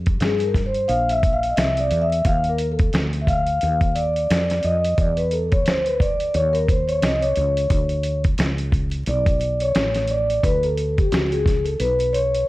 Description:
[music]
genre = hip hop, jazz-hop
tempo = 88 BPM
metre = 4/4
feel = swing 57% on 16ths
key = unclear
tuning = A4 = 441 Hz
[part]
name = woody fretless electric bass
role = bass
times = 0.0-12.4 s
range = A1 to G2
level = -24 LUFS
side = equal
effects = none
[part]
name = dusty soul sampler-style drum kit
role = drums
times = 0.1-12.5 s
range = hi-hat, kick drum, snare drum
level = -22 LUFS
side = equal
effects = vintage 12-bit sampler grit
[part]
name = vibraphone with soft mallets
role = accompaniment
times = 0.2-12.5 s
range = F#4 to F5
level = -21 LUFS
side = equal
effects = none
[sound]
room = light reverb, digital ambience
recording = dark, warm production, vinyl crackle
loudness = -18 LUFS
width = side -18 dB against mid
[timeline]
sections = 0.0-12.5 A section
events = vibraphone solo 0.0-12.5; drum fill 11.8-12.5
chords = 0.0 Fsus2; 0.9 Bbsus2; 2.3 Ebsus2; 5.0 Bm11; 6.3 Bbmadd11 (rootless); 7.7 D5

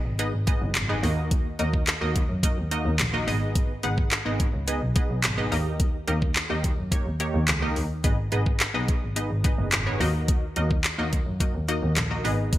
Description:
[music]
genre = dance-pop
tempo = 107 BPM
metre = 4/4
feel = straight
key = unclear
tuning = A4 = 438 Hz
[part]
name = rich double bass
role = bass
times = 0.1-12.6 s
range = F#1 to F#2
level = -27 LUFS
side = equal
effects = sidechain pumping
[part]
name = funky polysynth comp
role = accompaniment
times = 0.2-12.6 s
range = A#3 to F#5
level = -29 LUFS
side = equal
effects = chorus, tremolo, sidechain pumping
[part]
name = smooth R&B drum kit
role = drums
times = 0.2-12.6 s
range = handclaps, hi-hat, kick drum, snare drum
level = -25 LUFS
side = equal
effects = gated reverb
[sound]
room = light reverb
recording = bright 1980s-style digital production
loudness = -22 LUFS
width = side -14 dB against mid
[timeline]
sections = 0.0-12.6 A section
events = none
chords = 0.0 G#m; 1.0 D#m; 3.3 G#m; 5.5 D#; 8.0 G#m; 10.0 D#m

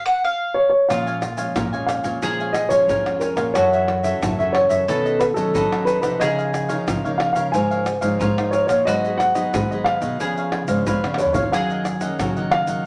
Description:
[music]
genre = samba and choro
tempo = 90 BPM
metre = 4/4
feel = straight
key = Bb minor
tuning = A4 = 440 Hz
[part]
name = mandolin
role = second line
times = 0.0-12.9 s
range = F4 to Gb5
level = -28 LUFS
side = equal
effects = none
[part]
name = dark baby grand piano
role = melody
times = 0.5-12.9 s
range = A4 to Ab5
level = -23 LUFS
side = equal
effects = none
[part]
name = cavaquinho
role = accompaniment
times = 0.9-12.8 s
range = D#4 to Ab5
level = -31 LUFS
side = equal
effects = none
[part]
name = nylon-string guitar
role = accompaniment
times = 0.9-12.8 s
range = F2 to D#4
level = -32 LUFS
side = equal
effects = none
[part]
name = nylon-string guitar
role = bass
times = 0.9-12.8 s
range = Gb2 to F#3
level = -28 LUFS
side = equal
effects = none
[part]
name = tube shaker, surdo, pandeiro and tamborim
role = percussion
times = 0.9-12.8 s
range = none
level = -30 LUFS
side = equal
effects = none
[sound]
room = wet studio reverb, RT60 0.5 s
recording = none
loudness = -20 LUFS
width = mono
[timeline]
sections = 0.9-12.9 A section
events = band accent 0.0-0.9; drum fill 11.0-11.5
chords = 0.0 N.C.; 0.9 Bbm7; 3.6 Gbm7; 4.9 B9; 6.2 Db69; 8.9 Abm7; 10.2 Db7b9; 11.5 Gb6

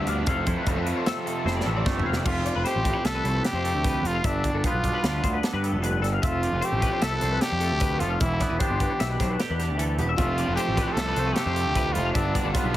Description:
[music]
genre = math rock and midwest emo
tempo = 151 BPM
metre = 5/4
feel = straight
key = F lydian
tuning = A4 = 439 Hz
[part]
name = twangy electric guitar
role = accompaniment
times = 0.0-12.8 s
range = F2 to A4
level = -32 LUFS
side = right 4 dB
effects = phaser, plate reverb
[part]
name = twelve-string electric guitar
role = arpeggios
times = 0.0-12.8 s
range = G4 to F5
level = -32 LUFS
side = left 6 dB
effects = ensemble chorus, plate reverb, digital delay
[part]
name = cranked stack guitar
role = riff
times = 0.0-2.3, 10.2-12.8 s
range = F2 to D4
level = -32 LUFS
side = equal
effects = overdrive
[part]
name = fuzz picked electric bass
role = bass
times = 0.0-12.8 s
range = E1 to G2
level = -27 LUFS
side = equal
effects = overdrive
[part]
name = modern studio drum kit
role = drums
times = 0.1-12.8 s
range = crash cymbal, hi-hat, kick drum, snare drum, toms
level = -28 LUFS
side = equal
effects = none
[part]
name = growling trumpet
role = melody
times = 2.3-12.8 s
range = D4 to A4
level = -28 LUFS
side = equal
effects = plate reverb
[sound]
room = light reverb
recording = heavily compressed radio sound, multiband compression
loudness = -22 LUFS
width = side -14 dB against mid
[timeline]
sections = 0.0-2.3 A section; 2.3-12.8 B section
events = drum fill 1.5-2.3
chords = 0.3 Fmaj7; 2.3 F6; 4.2 G7; 6.2 F6; 8.2 Em7; 10.2 F6; 12.2 G7

